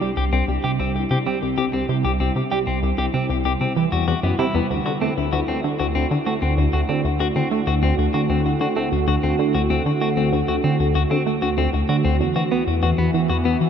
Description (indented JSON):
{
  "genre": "ambient, sequencer-driven space music",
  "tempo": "96 BPM",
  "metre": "4/4",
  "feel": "straight",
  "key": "unclear",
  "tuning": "A4 = 439 Hz",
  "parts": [
    { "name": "sweeping resonant pad", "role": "sustained chords", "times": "0.0-13.7 s", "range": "C3 to G#5", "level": "-24 LUFS", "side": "right 2 dB", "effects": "chorus" },
    { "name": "tight sequenced synth", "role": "riff", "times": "0.0-13.7 s", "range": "C2 to B3", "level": "-21 LUFS", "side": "equal", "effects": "chorus, ping-pong delay" },
    { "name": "clean electric guitar", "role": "arpeggios", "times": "0.2-13.6 s", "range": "B3 to G4", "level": "-25 LUFS", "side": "left 3 dB", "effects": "auto-pan, ping-pong delay" }
  ],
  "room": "moderate huge ambient reverb, RT60 8.8 s",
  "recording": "in a vast, echoing space",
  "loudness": "-18 LUFS",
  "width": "side -8 dB against mid",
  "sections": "0.0-13.7 A section",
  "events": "fade-in on analog synth pad 0.0-13.7",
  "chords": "0.0 C; 4.7 D7; 12.2 E"
}